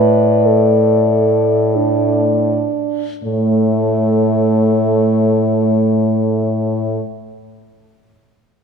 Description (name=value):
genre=classical, lyrical piece for horn quartet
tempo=free time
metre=none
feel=none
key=A major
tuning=A4 = 440 Hz
part: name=mellow French horn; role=melody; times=0.0-7.0 s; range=C#5 to D5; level=-19 LUFS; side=left 12 dB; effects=none
part: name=mellow French horn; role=second line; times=0.0-7.0 s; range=A3 to B4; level=-17 LUFS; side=right 8 dB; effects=none
part: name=warm French horn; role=accompaniment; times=0.0-7.0 s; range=A3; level=-20 LUFS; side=left 3 dB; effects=none
part: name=warm French horn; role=bass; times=0.0-7.0 s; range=A2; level=-18 LUFS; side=equal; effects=none
room=wet concert hall reverb, RT60 2.0 s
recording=dark, warm production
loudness=-12 LUFS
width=side -6 dB against mid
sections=0.0-3.2 A section; 3.2-7.8 B section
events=slowing down 0.0-3.2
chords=0.0 D5/A